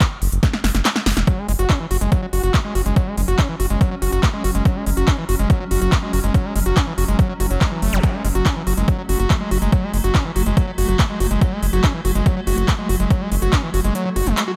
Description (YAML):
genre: psychedelic trance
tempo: 142 BPM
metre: 4/4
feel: straight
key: F# minor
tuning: A4 = 440 Hz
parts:
  - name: big-room dance drum kit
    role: drums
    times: 0.0-14.5 s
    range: handclaps, hi-hat, snare drum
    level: -26 LUFS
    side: equal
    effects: overdrive
  - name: electronic kick drum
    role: drums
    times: 0.0-13.6 s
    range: none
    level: -19 LUFS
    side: equal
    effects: overdrive
  - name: round analog bass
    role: bass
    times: 0.2-14.3 s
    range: E1 to F#1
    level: -22 LUFS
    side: equal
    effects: none
  - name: swarming drone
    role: sustained chords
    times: 2.3-14.6 s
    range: F#3 to C#4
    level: -31 LUFS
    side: equal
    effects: built-in reverb, sidechain pumping
  - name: screaming distorted acid line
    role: riff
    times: 1.3-14.5 s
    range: E3 to F#4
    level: -26 LUFS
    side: equal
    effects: distortion, chorus, sidechain pumping, tape echo
  - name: zap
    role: sound effects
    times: 7.9-8.0 s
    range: none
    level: -31 LUFS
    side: equal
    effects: none
room: little or no reverb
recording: none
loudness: -19 LUFS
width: mono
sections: 0.0-14.6 A section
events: drum fill 0.4-1.3; kick drops out 0.9-1.3, 13.9-14.6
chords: 0.0 F#5